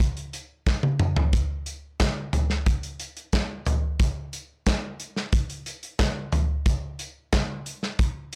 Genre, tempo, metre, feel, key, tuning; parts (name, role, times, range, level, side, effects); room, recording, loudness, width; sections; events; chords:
pop; 90 BPM; 4/4; straight
modern studio drum kit; drums; 0.0-8.4 s; hi-hat, kick drum, snare drum, toms; -26 LUFS; equal
tambourine; percussion; 0.0-8.4 s; -49 LUFS; equal
light reverb; blown-out, overdriven recording, overdrive; -26 LUFS; mono
0.0-8.4 A section
drum fill 0.7-1.3